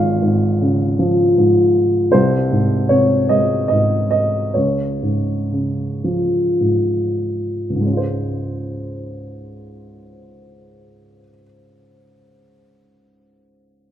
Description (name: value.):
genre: classical, lyrical solo piano.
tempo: 45-80 BPM.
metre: 3/4.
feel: rubato.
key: Db major.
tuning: A4 = 441 Hz.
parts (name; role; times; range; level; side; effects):
dark baby grand piano; solo; 0.0-13.9 s; Ab1 to F5; -15 LUFS; equal; none.
room: light reverb.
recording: none.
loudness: -15 LUFS.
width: side -11 dB against mid.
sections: 0.0-7.8 A section; 7.8-11.5 B section.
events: slowing down 2.1-7.8.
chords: 0.0 Dbmaj7; 2.1 Abadd11/C; 4.6 Db; 7.8 Dbmaj7.